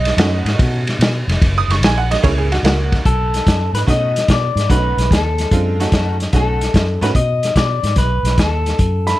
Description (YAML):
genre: electric blues shuffle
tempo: 146 BPM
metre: 4/4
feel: swing 68% on 8ths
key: B mixolydian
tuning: A4 = 439 Hz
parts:
  - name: tack piano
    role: accompaniment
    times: 0.0-7.1 s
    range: G#3 to D#6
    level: -21 LUFS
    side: right 5 dB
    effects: none
  - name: vintage muted fingered electric bass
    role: bass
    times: 0.0-9.1 s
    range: E#1 to B2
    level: -18 LUFS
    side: equal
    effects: none
  - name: vintage drum kit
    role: drums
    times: 0.1-9.1 s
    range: hi-hat, kick drum, ride cymbal, snare drum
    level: -17 LUFS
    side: equal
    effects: none
  - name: electric guitar through a small old amp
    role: melody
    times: 3.1-9.2 s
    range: A4 to D#5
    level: -20 LUFS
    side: left 2 dB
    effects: none
  - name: dark upright piano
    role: second line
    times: 9.1-9.2 s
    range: B5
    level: -16 LUFS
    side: right 4 dB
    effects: none
room: little or no reverb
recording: none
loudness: -13 LUFS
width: side -16 dB against mid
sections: 0.0-3.0 A section; 3.0-9.2 B section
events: none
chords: 0.0 B7; 1.4 F#7; 3.0 B7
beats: 0.18 0.59 1.00 | 1.41 1.82 2.23 2.64 | 3.05 3.46 3.87 4.28 | 4.69 5.10 5.51 5.92 | 6.33 6.74 7.15 7.56 | 7.97 8.38 8.79